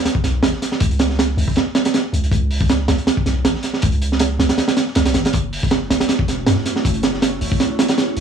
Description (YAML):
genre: drum and bass, jungle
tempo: 159 BPM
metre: 4/4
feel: swing 54% on 16ths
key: unclear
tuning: A4 = 440 Hz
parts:
  - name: crunchy breakbeat drum kit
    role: drums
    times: 0.1-8.2 s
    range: hi-hat, kick drum, snare drum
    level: -17 LUFS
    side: right 2 dB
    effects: none
  - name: long sustained 808-style bass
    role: bass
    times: 0.2-8.2 s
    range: E1 to F#2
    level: -20 LUFS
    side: equal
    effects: none
room: little or no reverb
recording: dry, gritty hardware recording, small room ambience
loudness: -15 LUFS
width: side -7 dB against mid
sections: 0.0-8.2 A section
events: none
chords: none